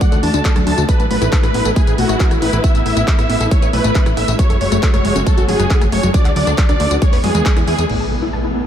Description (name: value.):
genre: uplifting trance.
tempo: 137 BPM.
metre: 4/4.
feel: straight.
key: A major.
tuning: A4 = 440 Hz.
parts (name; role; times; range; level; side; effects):
big supersaw lead; melody; 0.0-7.8 s; F#4 to A5; -20 LUFS; right 1 dB; sidechain pumping, low-pass filter, ping-pong delay.
warm studio string section; sustained chords; 0.0-8.7 s; E3 to F#4; -23 LUFS; equal; sidechain pumping.
wide unison pluck; arpeggios; 0.0-8.6 s; F#3 to A5; -21 LUFS; left 2 dB; sidechain pumping, diffuse ambient delay.
electronic kick drum; drums; 0.0-7.5 s; none; -14 LUFS; equal; none.
punchy analog drum machine; drums; 0.0-8.0 s; crash cymbal, handclaps, hi-hat, rim click, tambourine; -25 LUFS; left 1 dB; sidechain pumping on hats, sidechain pumping on perc, sidechain pumping on cymbals.
plucky analog bass; bass; 0.1-8.7 s; F#1 to F#2; -20 LUFS; equal; sidechain pumping.
impact; sound effects; 7.9-8.7 s; none; -23 LUFS; equal; none.
room: moderate cathedral reverb, RT60 5.2 s.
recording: dreamy mix soaked in reverb.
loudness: -12 LUFS.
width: side -10 dB against mid.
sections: 0.0-7.9 A section.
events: filter sweep on synth arpeggio sound 0.0-7.9; impact 7.9-8.7.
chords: 0.0 D; 0.9 Asus2; 4.4 F#madd9; 6.1 D; 7.0 E; 7.9 Asus2.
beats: 0.01 0.45 | 0.89 1.32 1.76 2.20 | 2.64 3.08 3.51 3.95 | 4.39 4.83 5.27 5.70 | 6.14 6.58 7.02 7.46 | 7.89 8.33.